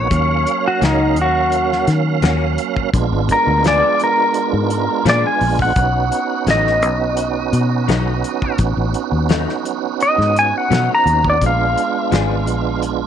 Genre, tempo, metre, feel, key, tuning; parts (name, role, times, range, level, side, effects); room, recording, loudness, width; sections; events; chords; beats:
straight-eighth soul blues; 85 BPM; 4/4; straight; A4 = 440 Hz
clean lap steel guitar; melody; 0.0-12.8 s; Eb4 to Bb5; -17 LUFS; left 1 dB
tonewheel organ; accompaniment; 0.0-13.1 s; Gb3 to F5; -21 LUFS; right 12 dB; slow rotary speaker, chorus vibrato
fingered electric bass; bass; 0.0-13.1 s; Ab1 to Eb3; -19 LUFS; left 1 dB; tube saturation
cloth-damped thuddy drum kit; drums; 0.1-13.0 s; hi-hat, kick drum, snare drum; -22 LUFS; left 1 dB
direct-recorded clean electric guitar; stabs; 0.8-12.3 s; F3 to Ab4; -25 LUFS; left 14 dB; ensemble chorus, slapback echo
light reverb, small room ambience; 1960s-style stereo with parts hard left and right; -14 LUFS; side -9 dB against mid
0.0-13.1 A section
electric slide guitar solo 0.0-13.1
0.1 Ebm7; 2.9 Bb7b9; 5.8 B7; 11.4 Bb7b9
| 0.11 0.82 1.53 2.24 | 2.95 3.65 4.36 5.07 | 5.77 6.48 7.18 7.89 | 8.60 9.30 10.01 10.71 | 11.41 12.12 12.82